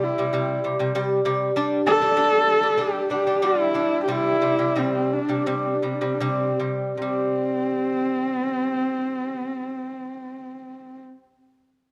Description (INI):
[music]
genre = mongolian traditional, Mongolian folk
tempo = 74-98 BPM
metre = 4/4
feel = straight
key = C gong mode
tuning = A4 = 440 Hz
[part]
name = warm horsehead fiddle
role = melody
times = 0.0-11.0 s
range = C4 to A4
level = -26 LUFS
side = equal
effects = none
[part]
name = lute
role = arpeggios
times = 0.0-11.3 s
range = C3 to D4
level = -26 LUFS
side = equal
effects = none
[sound]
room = moderate scoring stage reverb, RT60 1.6 s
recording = none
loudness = -23 LUFS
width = mono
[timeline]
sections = 0.0-7.0 A section; 7.0-10.2 B section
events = slowing down 1.6-7.0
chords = 0.0 C5; 1.6 G5; 4.1 C5